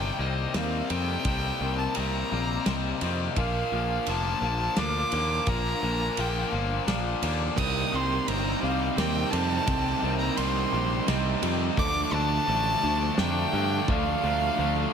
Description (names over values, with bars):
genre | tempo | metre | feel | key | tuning
post-rock | 85 BPM | 3/4 | straight | C dorian | A4 = 441 Hz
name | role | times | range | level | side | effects
clear violin | melody | 0.0-14.9 s | Eb5 to Eb6 | -30 LUFS | right 1 dB | digital delay
clear studio string section | sustained chords | 0.0-14.9 s | A3 to G5 | -39 LUFS | right 3 dB | none
twangy electric guitar | arpeggios | 0.0-14.9 s | Bb2 to D4 | -39 LUFS | left 3 dB | none
vibraphone with medium mallets | arpeggios | 0.0-14.9 s | A4 to Bb5 | -38 LUFS | right 7 dB | digital delay
cranked stack guitar | riff | 0.0-14.9 s | Bb2 to D4 | -31 LUFS | left 12 dB | overdrive
modern bright picked electric bass | bass | 0.0-14.8 s | F1 to G2 | -30 LUFS | equal | none
loose indie drum kit | drums | 0.5-14.0 s | crash cymbal, kick drum, ride cymbal, snare drum | -33 LUFS | right 1 dB | none
sludgy distorted guitar | riff | 7.6-14.9 s | C3 to Eb4 | -31 LUFS | right 15 dB | overdrive
room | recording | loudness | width
light reverb, small room ambience | none | -24 LUFS | side -7 dB against mid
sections
0.0-14.9 A section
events
build-up 0.0-14.9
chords
0.0 Cm7; 3.4 Bb; 7.6 Cm7; 11.8 Dm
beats
0.55 | 1.25 1.96 2.66 | 3.36 4.07 4.77 | 5.47 6.18 6.88 | 7.58 8.28 8.98 | 9.69 10.39 11.09 | 11.79 12.49 13.19 | 13.89 14.59